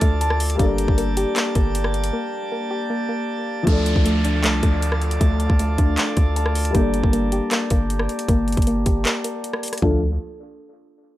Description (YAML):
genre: hip hop, trap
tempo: 156 BPM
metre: 4/4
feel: half-time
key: D minor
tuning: A4 = 440 Hz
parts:
  - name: dark concert grand piano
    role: accompaniment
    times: 0.0-10.0 s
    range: F3 to A5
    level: -27 LUFS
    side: left 3 dB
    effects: low-pass filter
  - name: chamber organ, principal chorus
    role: sustained chords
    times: 0.0-10.0 s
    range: D3 to A5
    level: -28 LUFS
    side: equal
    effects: low-pass filter
  - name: soft round pluck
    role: arpeggios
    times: 0.0-10.0 s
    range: A3 to A4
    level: -26 LUFS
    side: equal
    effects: chorus, low-pass filter, analog delay
  - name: long sustained 808-style bass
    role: bass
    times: 0.0-10.2 s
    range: G1 to D2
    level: -22 LUFS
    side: equal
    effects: none
  - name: trap drum kit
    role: drums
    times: 0.0-9.9 s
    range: handclaps, hi-hat, kick drum, rim click, toms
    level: -21 LUFS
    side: equal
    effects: none
  - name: downlifter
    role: sound effects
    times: 3.7-6.7 s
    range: none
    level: -32 LUFS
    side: equal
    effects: none
room: digital ambience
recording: dry, gritty hardware recording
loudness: -18 LUFS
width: side -15 dB against mid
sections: 0.0-3.7 A section; 3.7-9.8 B section; 9.8-11.2 C section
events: break 2.1-3.7, 9.1-9.8; filter sweep 3.7-9.8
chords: 0.0 Dm; 0.6 Gmadd9; 3.7 Dm; 6.7 Gmadd9; 9.8 Dm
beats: 0.21 | 0.59 0.98 1.36 1.75 | 2.13 2.52 2.90 3.29 | 3.67 4.05 4.44 4.82 | 5.21 5.59 5.98 6.36 | 6.75 7.13 7.52 7.90 | 8.29 8.67 9.05 9.44 | 9.82